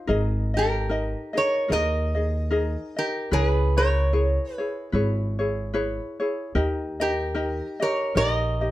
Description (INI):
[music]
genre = Hawaiian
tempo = 74 BPM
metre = 4/4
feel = swing 57% on 8ths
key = G# harmonic minor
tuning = A4 = 441 Hz
[part]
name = ukulele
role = accompaniment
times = 0.0-8.7 s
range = D#4 to D#5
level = -28 LUFS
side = left 1 dB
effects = none
[part]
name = upright bass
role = bass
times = 0.1-8.7 s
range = G#1 to D#2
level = -25 LUFS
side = equal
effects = none
[part]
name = metal-body resonator slide guitar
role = melody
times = 0.6-8.7 s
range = G4 to D#5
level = -25 LUFS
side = right 1 dB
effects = plate reverb
[sound]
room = moderate studio reverb, RT60 0.6 s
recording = dark, warm production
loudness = -22 LUFS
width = side -15 dB against mid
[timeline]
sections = 0.1-8.7 A section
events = none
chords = 0.1 G#sus2; 3.3 C#m7; 6.5 D#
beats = | 0.08 0.89 1.70 2.50 | 3.31 4.12 4.92 5.73 | 6.54 7.35 8.16